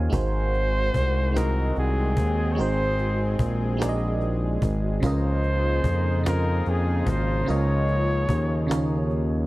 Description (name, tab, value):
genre	slow six-eight R&B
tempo	49 BPM (dotted quarters)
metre	6/8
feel	straight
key	Db major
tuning	A4 = 441 Hz
part	FM electric piano	accompaniment	0.0-9.5 s	Db3 to Ab5	-29 LUFS	right 2 dB	chorus
part	warm analog pad	sustained chords	0.0-9.5 s	Db3 to Ab4	-34 LUFS	left 1 dB	chorus
part	smooth gliding synth bass	bass	0.0-9.5 s	Ab1 to F2	-24 LUFS	equal	none
part	cajon	drums	0.1-9.2 s	none	-27 LUFS	equal	none
part	warm flugelhorn	melody	0.2-9.1 s	Ab4 to Db5	-28 LUFS	equal	plate reverb
part	mellow horn section	stabs	1.3-9.5 s	Eb3 to Ab4	-36 LUFS	left 5 dB	none
room	light reverb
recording	dark, warm production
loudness	-21 LUFS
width	side -18 dB against mid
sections	0.0-9.5 A section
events	kick muted 8.7-9.5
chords	0.1 Ab7; 5.0 Db69